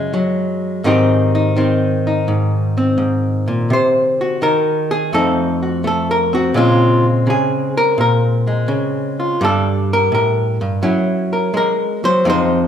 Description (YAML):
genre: solo jazz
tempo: 84 BPM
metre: 4/4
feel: swing 69% on 8ths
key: unclear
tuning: A4 = 440 Hz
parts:
  - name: archtop guitar, miked and amplified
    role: solo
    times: 0.0-12.7 s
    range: F2 to C5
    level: -14 LUFS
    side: equal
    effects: none
room: wet large studio reverb, RT60 1.2 s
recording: band playing live in one room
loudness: -14 LUFS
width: side -8 dB against mid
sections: 0.0-12.7 A section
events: hollow-body jazz guitar solo 0.0-12.7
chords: 0.0 Gbsus2; 0.8 Abmaj7; 3.7 Cdim; 5.1 F7; 6.6 Bbm9; 9.4 Gm; 10.8 Gb9